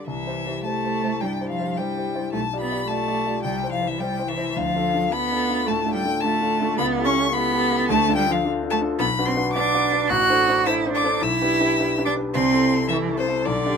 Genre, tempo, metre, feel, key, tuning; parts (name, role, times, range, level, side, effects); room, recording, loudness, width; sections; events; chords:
quick classical-period movement for piano trio; 108 BPM; 4/4; rubato; C major; A4 = 440 Hz
clear violin; melody; 0.0-13.8 s; C5 to F#6; -24 LUFS; left 5 dB
warm cello; second line; 0.0-13.8 s; C3 to F#4; -23 LUFS; right 5 dB
dark concert grand piano; accompaniment; 0.0-13.8 s; A1 to D5; -25 LUFS; left 2 dB
light reverb; -20 LUFS; side -6 dB against mid
0.1-13.8 A section
0.1 C; 2.3 G7/B; 3.4 C; 4.6 Dm; 6.8 A7/C#; 7.9 Dm; 9.0 Bm; 10.1 D7/A; 11.2 G/B; 12.3 Am/C